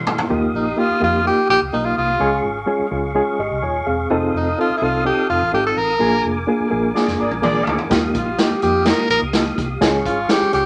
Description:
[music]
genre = uptempo 1960s-style soul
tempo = 126 BPM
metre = 4/4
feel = straight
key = unclear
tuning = A4 = 440 Hz
[part]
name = tonewheel organ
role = sustained chords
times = 0.0-10.7 s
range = G4 to Eb6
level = -30 LUFS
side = equal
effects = chorus vibrato, slow rotary speaker
[part]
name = swinging big-band drum kit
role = drums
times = 0.1-0.3, 7.0-10.6 s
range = hi-hat, kick drum, snare drum, toms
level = -23 LUFS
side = equal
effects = none
[part]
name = reed electric piano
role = accompaniment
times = 0.3-10.7 s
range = Ab3 to Ab5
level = -22 LUFS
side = equal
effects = fast tremolo
[part]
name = vintage muted fingered electric bass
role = bass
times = 0.3-10.7 s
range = Eb1 to F2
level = -30 LUFS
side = equal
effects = none
[part]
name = warm tenor saxophone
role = melody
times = 0.6-10.7 s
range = Eb4 to Bb4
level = -20 LUFS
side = equal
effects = none
[part]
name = warm horn section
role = second line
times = 7.0-7.8 s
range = Bb3 to D5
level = -24 LUFS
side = equal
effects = none
[sound]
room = moderate studio reverb, RT60 0.8 s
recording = none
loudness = -18 LUFS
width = mono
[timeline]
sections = 0.3-10.7 A section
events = drum fill 0.0-0.3, 7.0-7.9; band accent 0.0-0.3, 6.0-7.9; reed electric piano fill 3.4-4.1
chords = 0.3 Ebadd9; 2.2 Db; 4.1 F7; 6.0 Bb7; 7.9 Ebadd9; 9.8 Db

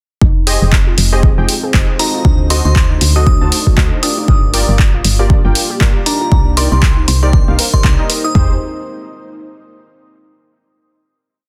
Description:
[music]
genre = deep house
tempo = 118 BPM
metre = 4/4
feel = swing 58% on 16ths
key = unclear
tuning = A4 = 441 Hz
[part]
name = dark analog pad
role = sustained chords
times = 0.8-8.6 s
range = Ab3 to D5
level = -29 LUFS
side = equal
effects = chorus, sidechain pumping
[part]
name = warbly dusty pluck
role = arpeggios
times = 0.2-8.6 s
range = D4 to D5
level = -27 LUFS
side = equal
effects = chorus, cassette tape, sidechain pumping, tape echo
[part]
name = woody FM bass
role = bass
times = 0.2-8.6 s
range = F1 to D2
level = -17 LUFS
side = equal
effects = sidechain pumping
[part]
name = deep house drum kit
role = drums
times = 0.2-8.5 s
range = kick drum, toms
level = -14 LUFS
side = equal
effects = none
[part]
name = warm analog keys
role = stabs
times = 0.5-8.5 s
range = Eb4 to A5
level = -25 LUFS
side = equal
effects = chorus, vintage 12-bit sampler grit, sidechain pumping, dub echo
[part]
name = punchy analog drum machine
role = drums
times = 0.5-8.2 s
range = handclaps, hi-hat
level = -19 LUFS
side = equal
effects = none
[part]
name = glassy synth bell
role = melody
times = 2.0-8.4 s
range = Bb5 to Eb6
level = -24 LUFS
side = equal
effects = chorus, phaser, dub echo
[sound]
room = digital ambience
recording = dense, heavily limited modern master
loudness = -12 LUFS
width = mono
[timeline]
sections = 0.2-8.4 groove; 8.4-10.4 final chord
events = none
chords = 0.2 Fm7; 2.2 D7b9; 4.3 Gm7; 6.3 Cm9; 8.4 Fm7

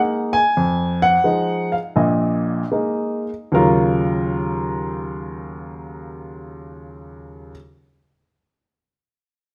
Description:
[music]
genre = solo jazz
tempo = 71-94 BPM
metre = 4/4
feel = swing 68% on 8ths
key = Eb minor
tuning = A4 = 440 Hz
[part]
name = warm upright piano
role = solo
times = 0.0-7.5 s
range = Bb1 to Ab5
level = -21 LUFS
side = equal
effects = none
[sound]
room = moderate large studio reverb, RT60 1.1 s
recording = none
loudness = -20 LUFS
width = mono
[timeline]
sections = 0.0-3.5 A section; 3.5-6.9 B section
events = slowing down 0.0-3.5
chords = 0.0 Bb7sus4; 0.6 Fm7; 1.9 Bb7sus4; 3.5 Ebm9

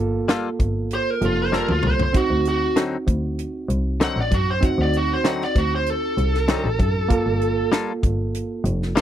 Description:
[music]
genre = straight-eighth soul blues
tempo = 97 BPM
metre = 4/4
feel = straight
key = G minor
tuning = A4 = 443 Hz
[part]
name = barky reed electric piano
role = accompaniment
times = 0.0-9.0 s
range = Bb3 to A4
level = -26 LUFS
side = right 4 dB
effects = overdrive
[part]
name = rich double bass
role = bass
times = 0.0-8.9 s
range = F1 to F#2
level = -23 LUFS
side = equal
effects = none
[part]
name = direct-recorded clean electric guitar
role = stabs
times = 0.3-9.0 s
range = D3 to A4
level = -24 LUFS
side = left 5 dB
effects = none
[part]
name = tight funk drum kit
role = drums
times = 0.3-9.0 s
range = hi-hat, kick drum, snare drum, toms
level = -21 LUFS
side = equal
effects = none
[part]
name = smooth overdriven lead guitar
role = melody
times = 0.9-9.0 s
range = F4 to F#5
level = -23 LUFS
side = right 1 dB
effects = none
[sound]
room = little or no reverb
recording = dry, close 1970s-style studio recording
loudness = -19 LUFS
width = side -11 dB against mid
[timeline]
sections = 0.0-9.0 A section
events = drum fill 1.5-2.1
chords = 0.0 Gm9; 2.1 D7b9; 7.1 Gm9

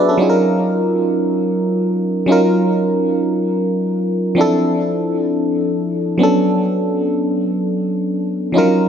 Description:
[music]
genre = amapiano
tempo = free time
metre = none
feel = none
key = unclear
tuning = A4 = 440 Hz
[part]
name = FM electric piano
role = solo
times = 0.0-8.9 s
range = F3 to Fb5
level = -14 LUFS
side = equal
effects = chorus, diffuse ambient delay
[sound]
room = wet lush hall reverb, RT60 1.8 s, digital ambience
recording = dreamy mix soaked in reverb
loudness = -15 LUFS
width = side -8 dB against mid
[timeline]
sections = 0.0-8.5 A section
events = none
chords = 0.2 Ebm9; 4.4 Dm9; 6.2 Bm9

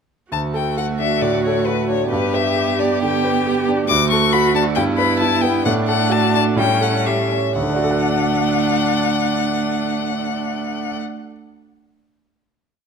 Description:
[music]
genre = quick classical-period movement for piano quartet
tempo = 117-139 BPM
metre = 4/4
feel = rubato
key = D major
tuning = A4 = 443 Hz
[part]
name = rich violin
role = melody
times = 0.3-11.0 s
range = B4 to D6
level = -21 LUFS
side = left 10 dB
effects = none
[part]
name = clear cello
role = second line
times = 0.3-11.0 s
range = G3 to B3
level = -23 LUFS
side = right 7 dB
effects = none
[part]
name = bright concert grand piano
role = accompaniment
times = 0.3-11.3 s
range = D2 to F#5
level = -21 LUFS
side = right 2 dB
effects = none
[part]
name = rich viola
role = accompaniment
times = 0.3-11.0 s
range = C#4 to G4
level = -24 LUFS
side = right 3 dB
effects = none
[sound]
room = wet recital hall reverb, RT60 1.4 s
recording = close, detailed microphones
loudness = -16 LUFS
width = side -6 dB against mid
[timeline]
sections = 0.3-7.6 theme; 7.6-11.3 final chord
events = slowing down 3.0-7.6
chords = 0.3 D; 2.1 G; 3.9 D; 4.8 Em/G; 5.7 D/A; 6.6 A7; 7.6 D

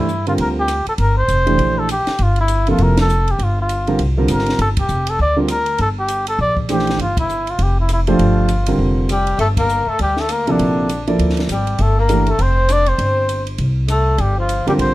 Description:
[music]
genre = modal jazz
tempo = 200 BPM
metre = 4/4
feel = swing 60% on 8ths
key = G dorian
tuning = A4 = 440 Hz
[part]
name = trumpet with cup mute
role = melody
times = 0.0-14.9 s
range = D4 to D5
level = -19 LUFS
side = equal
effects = none
[part]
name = warm grand piano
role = accompaniment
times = 0.0-12.3, 14.7-14.9 s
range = C3 to D5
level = -18 LUFS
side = right 2 dB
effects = none
[part]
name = upright bass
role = bass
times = 0.0-14.9 s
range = F1 to G2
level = -18 LUFS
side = equal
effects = none
[part]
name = compact cocktail drum kit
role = drums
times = 0.1-14.9 s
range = hi-hat, kick drum, ride cymbal, rim click, snare drum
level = -28 LUFS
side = equal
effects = none
[part]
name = breathy tenor saxophone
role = second line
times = 9.1-14.9 s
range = D3 to D4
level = -24 LUFS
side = left 4 dB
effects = none
[sound]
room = little or no reverb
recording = close, detailed microphones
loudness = -14 LUFS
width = side -16 dB against mid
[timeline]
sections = 0.0-14.9 A section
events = band accent 2.9, 4.7, 7.1, 9.5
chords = 0.0 Gm11; 2.2 Fsus2; 4.6 Gm11; 7.0 Fsus2; 9.4 Gm11; 11.8 Fsus2; 14.2 Gm7

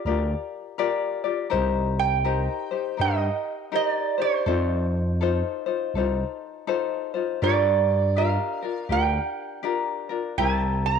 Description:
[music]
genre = Hawaiian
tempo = 81 BPM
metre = 4/4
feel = swing 62% on 8ths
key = unclear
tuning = A4 = 441 Hz
[part]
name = lap resonator guitar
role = melody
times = 0.0-11.0 s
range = C5 to Bb5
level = -25 LUFS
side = right 10 dB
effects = none
[part]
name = tenor ukulele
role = accompaniment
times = 0.0-11.0 s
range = C4 to D5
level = -26 LUFS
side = left 9 dB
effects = none
[part]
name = growling FM bass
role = bass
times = 0.1-11.0 s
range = C2 to G2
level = -25 LUFS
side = equal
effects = none
[sound]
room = wet spring reverb, RT60 1.7 s, small room reverb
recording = 1960s-style stereo with parts hard left and right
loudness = -22 LUFS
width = side -6 dB against mid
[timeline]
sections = 0.0-11.0 A section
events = none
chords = 0.0 Gm7; 1.5 Cm7; 4.5 F7; 7.4 Gm7; 10.4 C7

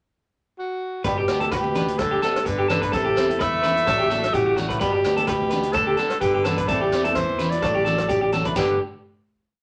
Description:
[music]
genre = highlife guitar band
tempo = 128 BPM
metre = 4/4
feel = swing 54% on 16ths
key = G major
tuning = A4 = 442 Hz
[part]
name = breathy alto saxophone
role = melody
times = 0.6-8.8 s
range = F#4 to E5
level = -27 LUFS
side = equal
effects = none
[part]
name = fingerpicked swing-style acoustic guitar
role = accompaniment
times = 1.0-8.8 s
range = E3 to G4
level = -34 LUFS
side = equal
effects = none
[part]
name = electric guitar through a small old amp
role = arpeggios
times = 1.0-8.8 s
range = G4 to B4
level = -25 LUFS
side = equal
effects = none
[part]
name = fingered electric bass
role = bass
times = 1.0-8.8 s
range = G1 to E2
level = -34 LUFS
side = equal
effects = none
[part]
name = vintage drum kit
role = drums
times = 1.0-8.7 s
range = crash cymbal, hi-hat, kick drum, rim click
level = -34 LUFS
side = equal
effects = none
[part]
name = shekere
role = percussion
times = 1.0-8.8 s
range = none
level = -39 LUFS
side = equal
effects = none
[part]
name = edgy tenor saxophone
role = second line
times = 1.1-8.8 s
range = A2 to A3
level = -33 LUFS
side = equal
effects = none
[part]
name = congas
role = percussion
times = 1.4-8.8 s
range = none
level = -34 LUFS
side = equal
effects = none
[sound]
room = wet small room reverb, RT60 0.5 s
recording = nothing above 10.8 kHz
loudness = -22 LUFS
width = mono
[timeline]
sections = 0.0-1.0 pickup bar; 1.0-8.6 A section; 8.6-9.6 final chord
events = none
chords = 0.0 N.C.; 1.0 G; 2.9 Am; 3.9 D/A; 4.8 G; 6.7 Am; 7.6 D/A; 8.6 G

